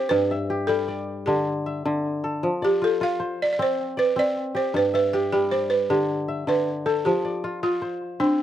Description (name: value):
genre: west african traditional, West African string and xylophone music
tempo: 104 BPM (dotted quarters)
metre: 12/8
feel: straight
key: unclear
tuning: A4 = 445 Hz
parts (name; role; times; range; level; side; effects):
- balafon; melody; 0.0-8.4 s; D4 to F5; -23 LUFS; right 1 dB; slapback echo
- kora; arpeggios; 0.0-8.4 s; G2 to E5; -26 LUFS; left 2 dB; slapback echo
room: light reverb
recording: recorded outdoors, with no room sound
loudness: -21 LUFS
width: side -11 dB against mid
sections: 0.0-8.4 A section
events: none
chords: 0.1 G; 2.4 F; 4.7 G; 7.1 F